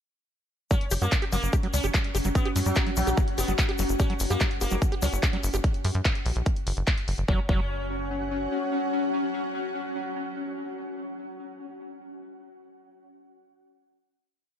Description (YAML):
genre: psychedelic trance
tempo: 146 BPM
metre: 4/4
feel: straight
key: unclear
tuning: A4 = 445 Hz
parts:
  - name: sitar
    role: melody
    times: 0.7-12.0 s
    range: F#3 to C#4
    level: -35 LUFS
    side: equal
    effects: phaser, sidechain pumping, digital delay
  - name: pulsing gated texture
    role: sustained chords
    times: 0.7-11.4 s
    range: F#3 to C#4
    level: -34 LUFS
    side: left 3 dB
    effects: chorus, built-in reverb, sidechain pumping
  - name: overdriven acid bass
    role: riff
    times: 0.7-7.6 s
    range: F#3 to G4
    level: -34 LUFS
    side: right 1 dB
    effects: distortion, auto-pan, sidechain pumping, digital delay
  - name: big-room dance drum kit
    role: drums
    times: 0.7-7.3 s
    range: handclaps, hi-hat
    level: -32 LUFS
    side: equal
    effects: small room ambience
  - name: electronic kick drum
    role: drums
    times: 0.7-7.6 s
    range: none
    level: -25 LUFS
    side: equal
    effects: small room ambience
  - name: egg shaker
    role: percussion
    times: 0.7-5.6 s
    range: none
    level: -36 LUFS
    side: left 6 dB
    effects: none
  - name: ethereal airy pad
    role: texture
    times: 1.4-11.3 s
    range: C#4 to F#5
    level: -34 LUFS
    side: equal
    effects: ensemble chorus, built-in reverb, sidechain pumping
  - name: tight sequencer bass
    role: bass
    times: 0.9-8.5 s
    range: F#1 to F#2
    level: -27 LUFS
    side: equal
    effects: none
room: light reverb, digital ambience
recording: none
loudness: -24 LUFS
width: side -9 dB against mid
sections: 0.7-7.3 groove; 7.3-10.6 final chord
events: none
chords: 0.7 F#5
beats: | 0.71 1.12 1.53 1.94 | 2.35 2.76 3.17 3.58 | 4.00 4.41 4.82 5.23 | 5.64 6.05 6.46 6.87 | 7.28 7.70 8.11 8.52 | 8.93 9.34 9.75 10.16